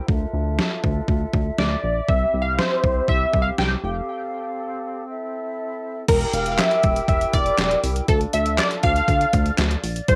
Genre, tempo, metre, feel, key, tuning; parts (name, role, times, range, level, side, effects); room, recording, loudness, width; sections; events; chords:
synth-pop; 120 BPM; 4/4; straight; D minor; A4 = 438 Hz
mellow hollow flute section; sustained chords; 0.0-10.2 s; C4 to G5; -32 LUFS; equal; cassette tape
chorused synth bass; bass; 0.1-10.2 s; E1 to D2; -26 LUFS; equal
detuned 8-bit digital drum machine; drums; 0.1-10.2 s; crash cymbal, handclaps, hi-hat, kick drum, snare drum; -25 LUFS; equal
funky polysynth comp; melody; 1.6-10.2 s; A4 to G5; -24 LUFS; equal; chorus, cassette tape, tape echo
moderate booth ambience, RT60 0.2 s; home recording on cassette; -22 LUFS; mono
0.0-6.1 A section; 6.1-10.2 B section
break 4.1-6.1
0.1 Dmadd9; 2.1 C; 3.8 Fadd9; 5.1 Am; 6.1 Edim; 8.1 Dm